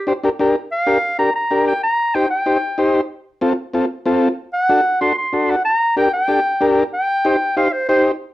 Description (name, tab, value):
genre	latin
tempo	188 BPM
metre	4/4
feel	straight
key	G minor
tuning	A4 = 440 Hz
part	warm clarinet	melody	0.0-8.0 s	C5 to C6	-17 LUFS	equal	none
part	combo organ	accompaniment	0.1-8.1 s	C4 to C5	-17 LUFS	left 1 dB	none
room	moderate studio reverb, RT60 0.6 s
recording	worn, warbling old tape, cassette tape, warbly pitch drift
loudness	-15 LUFS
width	side -16 dB against mid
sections	0.6-8.3 A section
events	clarinet solo 0.6-8.3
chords	0.0 Gm; 1.8 Cm; 3.1 F; 4.4 D7; 5.7 Gm; 6.9 Cm